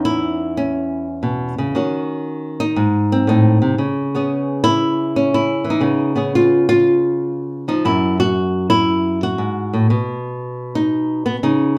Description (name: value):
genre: solo jazz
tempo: 118 BPM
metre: 4/4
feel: swing 67% on 8ths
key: unclear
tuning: A4 = 442 Hz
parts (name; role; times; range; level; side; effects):
- flamenco guitar; solo; 0.0-11.8 s; E2 to G#4; -18 LUFS; equal; none
room: wet large studio reverb, RT60 0.9 s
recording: band playing live in one room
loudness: -18 LUFS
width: mono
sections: 0.0-11.8 A section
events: none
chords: 0.0 E5; 1.7 D#m7; 2.8 G#; 3.8 C#m7; 5.8 C#7; 7.9 F#7sus2; 9.9 B